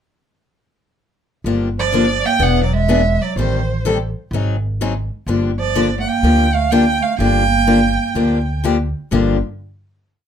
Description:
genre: acoustic string swing (jazz manouche)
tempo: 125 BPM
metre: 4/4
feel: swing 65% on 8ths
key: G minor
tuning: A4 = 440 Hz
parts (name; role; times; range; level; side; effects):
- upright bass; bass; 1.4-9.4 s; E1 to D2; -20 LUFS; equal; none
- picked steel-string acoustic guitar; accompaniment; 1.5-9.4 s; G2 to A4; -17 LUFS; left 4 dB; none
- warm violin; melody; 1.8-8.6 s; C5 to G5; -19 LUFS; right 4 dB; plate reverb
- dark clarinet; second line; 1.8-8.6 s; Eb3 to B3; -21 LUFS; right 5 dB; none
room: moderate club ambience, RT60 0.5 s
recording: none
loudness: -14 LUFS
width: side -8 dB against mid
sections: 1.5-9.1 A section; 9.1-10.3 final chord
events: none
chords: 1.5 Gm7; 2.4 E7; 3.4 Am7b5; 4.3 Ab7; 5.3 Gm7

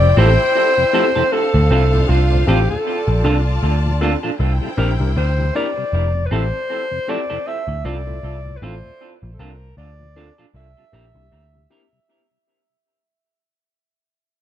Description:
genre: reggae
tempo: 78 BPM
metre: 4/4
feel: swing 56% on 16ths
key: F major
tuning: A4 = 439 Hz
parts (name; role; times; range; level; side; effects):
- breathy alto saxophone; melody; 0.0-11.7 s; F4 to E5; -20 LUFS; left 1 dB; tape echo
- warm studio string section; second line; 0.0-5.9 s; D4 to A5; -26 LUFS; left 1 dB; none
- mellow tonewheel organ; accompaniment; 0.0-12.0 s; D2 to E4; -29 LUFS; left 4 dB; overdrive, chorus vibrato, slow rotary speaker, tape echo
- vintage muted picked electric bass; bass; 0.0-11.7 s; F1 to D2; -16 LUFS; equal; none
- tine electric piano; accompaniment; 0.2-11.8 s; Bb3 to Bb4; -27 LUFS; left 3 dB; phaser, tape echo
- electric guitar through a small old amp; stabs; 0.2-11.8 s; C4 to Bb4; -25 LUFS; right 4 dB; tape echo
room: light reverb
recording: none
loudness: -15 LUFS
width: side -11 dB against mid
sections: 0.0-12.1 A section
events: fade-out 0.0-12.1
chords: 0.0 Fmaj7; 1.3 Dm7; 2.9 Bbmaj7; 4.4 C7; 5.9 Fmaj7; 7.5 Dm7; 9.0 Bbmaj7; 10.5 C7

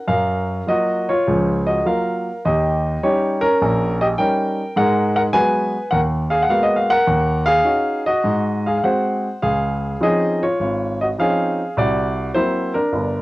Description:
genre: solo jazz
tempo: 103 BPM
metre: 4/4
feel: swing 69% on 8ths, rubato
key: unclear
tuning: A4 = 440 Hz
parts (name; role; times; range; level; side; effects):
- warm grand piano; solo; 0.0-13.2 s; G1 to Ab5; -16 LUFS; equal; cassette tape
room: light reverb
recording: home recording on cassette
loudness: -16 LUFS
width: side -18 dB against mid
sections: 0.1-13.2 A section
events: none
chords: 0.1 Gbmaj7; 2.4 Eb7; 4.8 Abm9; 7.1 Ebm7; 8.2 Ab7; 9.4 Dbmaj9; 11.8 C7#11

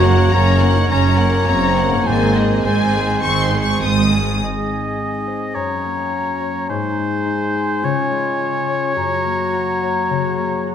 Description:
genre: cinematic, heroic adventure film score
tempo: 105 BPM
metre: 4/4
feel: straight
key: Ab mixolydian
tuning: A4 = 438 Hz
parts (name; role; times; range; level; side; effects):
- rich symphonic violin section; melody; 0.0-4.4 s; Eb5 to Eb6; -23 LUFS; left 3 dB; none
- clear oboe; second line; 0.0-10.7 s; C5 to Eb5; -23 LUFS; right 1 dB; none
- mellow silver concert flute; second line; 0.0-10.7 s; Ab5 to Bb5; -25 LUFS; left 2 dB; none
- warm clarinet; second line; 0.0-10.7 s; Ab3 to Gb4; -27 LUFS; left 2 dB; none
- warm symphonic violin section; second line; 0.0-4.4 s; Ab4 to Db5; -27 LUFS; left 3 dB; none
- rich studio viola section; accompaniment; 0.0-4.4 s; Ab3 to Db4; -28 LUFS; left 1 dB; none
- mellow trombone section; sustained chords; 0.0-4.1 s; Db3 to C4; -27 LUFS; right 2 dB; none
- warm French horn section; sustained chords; 0.0-10.7 s; Gb3 to Gb4; -26 LUFS; left 3 dB; none
- concert harp; arpeggios; 0.0-10.7 s; Gb2 to Db6; -26 LUFS; left 9 dB; none
- clear studio cello section; bass; 0.0-4.3 s; Gb2 to Ab2; -19 LUFS; right 2 dB; none
- rich symphonic double bass section; bass; 0.0-4.3 s; Gb1 to Ab1; -21 LUFS; right 4 dB; none
room: wet scoring stage reverb, RT60 2.0 s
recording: none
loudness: -15 LUFS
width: side -8 dB against mid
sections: 0.0-4.4 A section; 4.4-10.7 B section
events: none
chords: 0.0 Gb; 2.1 Ab; 5.6 Gb; 6.7 Ab; 7.8 Db; 9.0 Gb

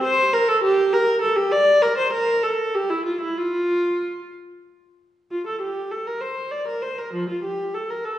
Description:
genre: classical, baroque-style suite movement for unaccompanied viola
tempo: 64 BPM (dotted quarters)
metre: 6/8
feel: uneven beats, rubato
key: F major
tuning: A4 = 440 Hz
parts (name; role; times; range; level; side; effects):
- warm viola; solo; 0.0-8.2 s; F3 to D5; -20 LUFS; equal; none
room: wet recital hall reverb, RT60 1.5 s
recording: heard from further back in the room, nothing above 10.6 kHz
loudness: -19 LUFS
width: side -12 dB against mid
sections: 0.0-5.3 A section; 5.3-8.2 B section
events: none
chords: none

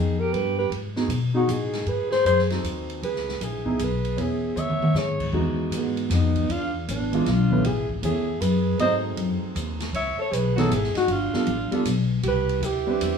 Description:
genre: jazz, small-group swing and bop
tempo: 156 BPM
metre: 3/4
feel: swing 65% on 8ths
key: C# minor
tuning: A4 = 438 Hz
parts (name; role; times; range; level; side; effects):
- mellow alto saxophone; melody; 0.0-13.2 s; B3 to E5; -26 LUFS; equal; none
- mellow alto saxophone; second line; 0.0-13.2 s; G#3 to C#5; -31 LUFS; right 5 dB; none
- warm upright piano; accompaniment; 0.0-13.2 s; E3 to G5; -28 LUFS; right 3 dB; none
- upright bass; bass; 0.0-13.2 s; G1 to B2; -26 LUFS; left 2 dB; none
- open jazz drum kit; drums; 0.3-13.1 s; crash cymbal, hi-hat, kick drum, ride cymbal, snare drum, toms; -32 LUFS; right 1 dB; none
room: moderate club reverb, RT60 0.8 s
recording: heard from further back in the room, studio reverb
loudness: -22 LUFS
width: side -6 dB against mid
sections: 0.0-5.3 A section; 5.3-13.2 B section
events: drum fill 4.6-4.9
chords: 0.0 D#7b13; 0.7 G#m7; 1.9 G#7b9; 3.0 C#m9; 5.3 Emaj9; 6.5 E7(no3); 7.6 Amaj9; 8.8 G#7b9; 9.9 C#m7; 11.1 G7; 12.2 Cmaj9

